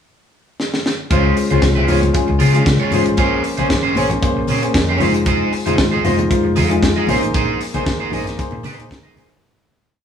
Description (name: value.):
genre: disco.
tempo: 115 BPM.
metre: 4/4.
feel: straight.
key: unclear.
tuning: A4 = 440 Hz.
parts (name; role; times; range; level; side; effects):
tight funk drum kit; drums; 0.6-9.4 s; hi-hat, kick drum, snare drum; -20 LUFS; equal; none.
electric guitar at the edge of break-up; accompaniment; 1.1-9.3 s; Db4 to Eb5; -21 LUFS; right 3 dB; none.
warm baby grand piano; accompaniment; 1.1-9.4 s; Ab3 to Eb5; -19 LUFS; left 2 dB; none.
hollow-body short-scale fingered electric bass; bass; 1.1-9.4 s; F1 to Db3; -20 LUFS; equal; none.
congas; percussion; 1.1-9.3 s; none; -25 LUFS; left 1 dB; none.
room: wet studio reverb, RT60 0.8 s.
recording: band playing live in one room, small room ambience.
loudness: -14 LUFS.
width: side -8 dB against mid.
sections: 0.0-1.1 pickup bar; 1.1-9.4 verse.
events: drum fill 0.6-1.1; grand piano fill 3.7-5.3; fade-out 7.3-9.4.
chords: 0.0 N.C.; 1.1 Dbmaj7; 3.2 Bbm9; 5.0 Fm7; 7.1 Bb9sus4.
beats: 0.07 0.59 | 1.11 1.62 2.14 2.66 | 3.18 3.70 4.22 4.74 | 5.26 5.78 6.30 6.82 | 7.34 7.86 8.38 8.91.